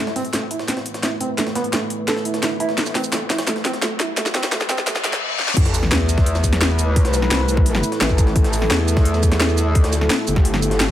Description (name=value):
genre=dark technical drum and bass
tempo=172 BPM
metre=4/4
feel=straight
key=A minor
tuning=A4 = 436 Hz
part: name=dark analog pad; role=sustained chords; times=0.0-10.9 s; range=A3 to B4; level=-25 LUFS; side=equal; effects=chorus, sidechain pumping
part: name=felt-muted upright piano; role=arpeggios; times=0.0-5.1 s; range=A3 to A4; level=-25 LUFS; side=right 2 dB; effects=sidechain pumping, ping-pong delay
part: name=riser, reverse cymbal and sub drop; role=sound effects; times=0.0-7.0 s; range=none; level=-28 LUFS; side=left 2 dB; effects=none
part: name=jungle sampler-style drum kit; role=drums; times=0.1-10.9 s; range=hi-hat, snare drum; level=-30 LUFS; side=equal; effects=high-pass filter on hats, high-pass filter on snare, high-pass filter on room
part: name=drum and bass drum kit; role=drums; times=0.2-10.9 s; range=crash cymbal, hi-hat, shaker, snare drum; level=-22 LUFS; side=equal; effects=none
part: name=metallic wobble bass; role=bass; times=5.6-10.9 s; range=G1 to E2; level=-19 LUFS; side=equal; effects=distortion, chorus, overdrive
part: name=electronic kick drum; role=drums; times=5.6-10.9 s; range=none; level=-15 LUFS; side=equal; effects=none
room=light reverb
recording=high-pass filter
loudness=-16 LUFS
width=side -12 dB against mid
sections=0.0-5.6 A section; 5.6-10.9 B section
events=build-up 0.0-5.6; drum fill 0.0-5.2, 5.4; riser 0.0-5.2; filter sweep on analog synth pad 0.0-5.6; filter sweep 0.0-5.6; reverse cymbal 4.9-5.6; drop 5.6-10.9; impact 5.6-7.0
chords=0.0 A5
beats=0.33 0.68 1.03 | 1.38 1.73 2.08 2.43 | 2.77 3.12 3.47 3.82 | 4.17 4.52 4.87 5.22 | 5.57 5.92 6.26 6.61 | 6.96 7.31 7.66 8.01 | 8.36 8.71 9.05 9.40 | 9.75 10.10 10.45 10.80